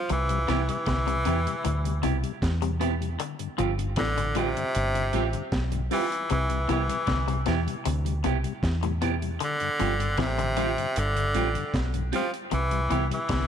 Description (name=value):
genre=roots reggae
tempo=77 BPM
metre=4/4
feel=straight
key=G mixolydian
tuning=A4 = 441 Hz
part: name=edgy tenor saxophone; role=melody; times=0.0-13.5 s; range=C3 to F3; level=-28 LUFS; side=equal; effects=tape echo
part: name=semi-hollow electric guitar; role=arpeggios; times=0.1-13.4 s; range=A2 to F3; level=-34 LUFS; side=left 11 dB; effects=none
part: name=deep dub fingered electric bass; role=bass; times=0.1-13.5 s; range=G1 to E2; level=-28 LUFS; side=equal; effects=none
part: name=deep reggae drum kit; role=drums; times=0.1-13.5 s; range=hi-hat, kick drum, snare drum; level=-33 LUFS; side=right 1 dB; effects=none
part: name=mellow tonewheel organ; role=accompaniment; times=0.3-13.2 s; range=G2 to F4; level=-35 LUFS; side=left 11 dB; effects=slow rotary speaker
part: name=semi-hollow electric guitar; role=accompaniment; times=0.5-13.0 s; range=B3 to G4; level=-33 LUFS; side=right 12 dB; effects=tape echo
room=light reverb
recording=1960s-style stereo with parts hard left and right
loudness=-24 LUFS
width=side -8 dB against mid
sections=0.0-13.5 A section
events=none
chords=0.1 Cmaj7; 3.2 G7sus4; 6.3 Cmaj7; 9.4 G7sus4; 12.5 Cmaj7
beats=| 0.10 0.87 1.65 2.42 | 3.20 3.98 4.75 5.53 | 6.30 7.08 7.85 8.63 | 9.41 10.18 10.96 11.74 | 12.52 13.29